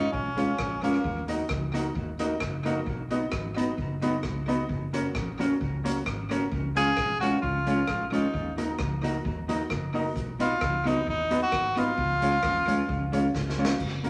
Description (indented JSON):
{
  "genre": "ska",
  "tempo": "132 BPM",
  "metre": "4/4",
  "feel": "swing 54% on 8ths",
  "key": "unclear",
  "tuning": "A4 = 444 Hz",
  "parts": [
    { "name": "breathy tenor saxophone", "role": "melody", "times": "0.0-1.3, 6.8-13.3 s", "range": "A#3 to G#4", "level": "-30 LUFS", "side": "equal", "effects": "none" },
    { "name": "mellow electric guitar", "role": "accompaniment", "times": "0.0-14.1 s", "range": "G#3 to F#4", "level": "-32 LUFS", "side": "equal", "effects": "tape echo" },
    { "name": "warm upright piano", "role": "stabs", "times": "0.0-14.1 s", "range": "C#4 to D#5", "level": "-37 LUFS", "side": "equal", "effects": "none" },
    { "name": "vintage muted fingered electric bass", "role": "bass", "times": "0.0-14.1 s", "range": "E#1 to D#2", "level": "-36 LUFS", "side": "equal", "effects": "none" },
    { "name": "street-band drum kit", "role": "drums", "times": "0.1-14.1 s", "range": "crash cymbal, hi-hat, kick drum, rim click, snare drum", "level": "-37 LUFS", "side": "equal", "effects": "tape echo" }
  ],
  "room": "wet club ambience, RT60 0.5 s",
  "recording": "none",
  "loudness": "-28 LUFS",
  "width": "mono",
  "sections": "0.0-13.8 A section",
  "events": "drum fill 13.3-13.8",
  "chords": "0.0 C#; 1.0 D#m; 2.9 B; 4.7 F#; 6.5 C#; 8.3 D#m; 10.2 B; 12.0 C#",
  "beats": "0.13 0.59 | 1.05 1.50 1.96 2.41 | 2.87 3.33 3.78 4.24 | 4.69 5.15 5.61 6.06 | 6.52 6.97 7.43 7.88 | 8.34 8.79 9.25 9.70 | 10.16 10.61 11.07 11.52 | 11.98 12.43 12.89 13.34 | 13.80"
}